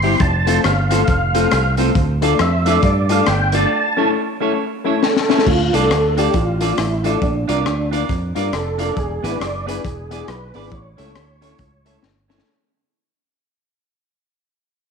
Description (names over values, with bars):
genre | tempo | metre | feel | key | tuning
ska | 137 BPM | 4/4 | swing 61% on 8ths | D minor | A4 = 440 Hz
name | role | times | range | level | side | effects
percussive tonewheel organ | melody | 0.0-12.0 s | D4 to C6 | -21 LUFS | right 1 dB | chorus vibrato, slow rotary speaker
clean electric guitar | accompaniment | 0.0-12.4 s | B3 to D5 | -24 LUFS | right 10 dB | spring reverb, slapback echo
dark upright piano | stabs | 0.0-12.4 s | G3 to Bb4 | -22 LUFS | left 8 dB | slapback echo
fingered electric bass | bass | 0.0-12.4 s | E1 to G2 | -20 LUFS | right 1 dB | none
crunchy breakbeat drum kit | drums | 0.0-12.5 s | crash cymbal, hi-hat, kick drum, rim click, snare drum | -22 LUFS | left 3 dB | none
room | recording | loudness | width
moderate echo chamber reverb, RT60 1.3 s, studio reverb | 1960s-style stereo with parts hard left and right | -15 LUFS | side -6 dB against mid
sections
0.0-5.5 A section; 5.5-12.5 B section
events
break 3.7-5.5; drum fill 5.0-5.5, 12.0-12.5; fade-out 5.5-12.5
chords
0.2 F; 2.0 Dm; 3.7 A; 5.5 Dm; 7.2 Bb; 9.0 E7; 10.7 A